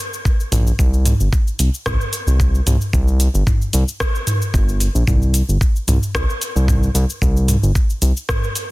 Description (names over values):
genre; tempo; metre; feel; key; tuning
organic downtempo; 112 BPM; 4/4; swing 54% on 16ths; unclear; A4 = 440 Hz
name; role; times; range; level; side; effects
afro-pop drum kit; drums; 0.1-8.7 s; hi-hat, rim click, shaker, toms; -22 LUFS; equal; soft clipping on snare
electronic kick drum; drums; 0.3-8.4 s; none; -17 LUFS; equal; none
smooth synth bass; bass; 0.5-8.1 s; G1 to C2; -15 LUFS; equal; none
room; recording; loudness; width
little or no reverb; dense, heavily limited modern master; -15 LUFS; side -20 dB against mid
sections
0.0-8.7 A section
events
none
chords
none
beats
0.25 | 0.79 1.32 1.86 2.39 | 2.93 3.47 4.00 4.54 | 5.07 5.61 6.14 6.68 | 7.22 7.75 8.29